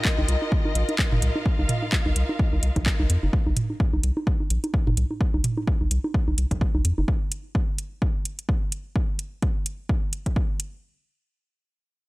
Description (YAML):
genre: minimal techno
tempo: 128 BPM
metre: 4/4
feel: swing 57% on 16ths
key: C minor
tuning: A4 = 440 Hz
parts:
  - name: dark symphonic string section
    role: texture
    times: 0.0-3.3 s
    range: F4 to G5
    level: -31 LUFS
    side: left 1 dB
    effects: sidechain pumping
  - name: electronic kick drum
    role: drums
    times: 0.1-10.5 s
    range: none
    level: -24 LUFS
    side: equal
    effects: overdrive
  - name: house drum kit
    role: drums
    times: 0.1-10.7 s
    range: handclaps, hi-hat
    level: -29 LUFS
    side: equal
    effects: overdrive
  - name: rubbery square bass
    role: bass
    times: 0.2-7.0 s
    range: G1 to F2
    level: -23 LUFS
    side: equal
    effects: sidechain pumping
  - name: electronic congas and toms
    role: percussion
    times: 0.2-7.1 s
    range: none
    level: -29 LUFS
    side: right 2 dB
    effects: digital delay
room: little or no reverb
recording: none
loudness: -22 LUFS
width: side -21 dB against mid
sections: 0.0-10.8 A section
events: filter sweep on analog synth bass 0.0-7.1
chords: 0.0 Csus4